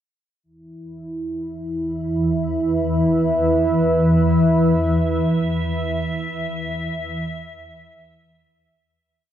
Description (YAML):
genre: dark ambient drone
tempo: free time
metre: none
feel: none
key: unclear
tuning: A4 = 437 Hz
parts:
  - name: dark analog pad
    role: sustained chords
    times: 1.0-9.0 s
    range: E4 to E5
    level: -22 LUFS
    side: right 1 dB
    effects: chorus, shimmer reverb
  - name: swarming drone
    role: drone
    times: 1.9-9.1 s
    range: E2 to E3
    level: -20 LUFS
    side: equal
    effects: built-in reverb
  - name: icy glass pad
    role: texture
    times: 4.9-9.0 s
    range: E5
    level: -30 LUFS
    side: equal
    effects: chorus, built-in reverb, shimmer reverb
room: wet cathedral reverb, RT60 7.3 s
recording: in a vast, echoing space, nothing above 10.6 kHz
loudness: -18 LUFS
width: side -10 dB against mid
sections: 0.5-9.0 A section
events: fade-out on analog synth pad 0.5-9.0; fade-out 4.7-9.0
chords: 0.5 E5